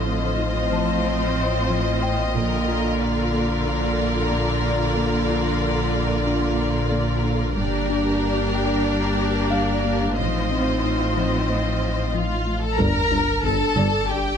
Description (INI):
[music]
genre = cinematic, hybrid orchestral and electronic film score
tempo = 92 BPM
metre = 4/4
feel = straight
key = G minor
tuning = A4 = 440 Hz
[part]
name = warm symphonic violin section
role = second line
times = 0.0-14.4 s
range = F4 to Eb5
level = -27 LUFS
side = left 2 dB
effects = none
[part]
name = warm symphonic viola section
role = accompaniment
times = 0.0-14.4 s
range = D3 to Bb4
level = -27 LUFS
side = right 1 dB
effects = none
[part]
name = mellow French horn section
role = sustained chords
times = 0.0-14.3 s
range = D3 to Eb5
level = -28 LUFS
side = left 4 dB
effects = none
[part]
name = pure sine sub bass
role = bass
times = 0.0-14.4 s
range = G1 to Bb1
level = -28 LUFS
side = equal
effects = none
[part]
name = rich chamber double bass section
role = bass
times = 0.0-3.0, 7.6-13.8 s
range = G1 to Bb1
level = -29 LUFS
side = right 4 dB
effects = none
[part]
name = warm symphonic cello section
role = bass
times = 0.0-13.8 s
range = G2 to Bb2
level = -27 LUFS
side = right 4 dB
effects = none
[part]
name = dark grand piano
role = texture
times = 0.0-14.4 s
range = Eb4 to A5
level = -34 LUFS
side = left 4 dB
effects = ping-pong delay
[part]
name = harp-like synth pluck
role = arpeggios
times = 0.1-14.0 s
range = F3 to Bb4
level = -30 LUFS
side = left 4 dB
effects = chorus, ping-pong delay
[part]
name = dark chamber violin section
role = melody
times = 12.1-14.4 s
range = F5 to Bb5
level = -26 LUFS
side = left 5 dB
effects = none
[part]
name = mellow tuba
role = bass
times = 12.8-13.9 s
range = G1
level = -30 LUFS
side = right 5 dB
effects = none
[part]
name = taiko ensemble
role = drums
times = 12.8-13.4 s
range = none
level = -29 LUFS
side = left 1 dB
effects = none
[part]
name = sub drop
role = sound effects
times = 12.8-14.4 s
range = none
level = -31 LUFS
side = equal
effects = none
[sound]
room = moderate scoring stage reverb, RT60 1.7 s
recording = none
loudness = -19 LUFS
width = side -7 dB against mid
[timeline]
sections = 0.0-12.8 A section; 12.8-14.4 B section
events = build-up 0.0-12.8; impact 12.8-14.4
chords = 0.0 F7/A; 2.4 Bb; 7.6 Gm; 10.2 F7/A; 12.8 Gm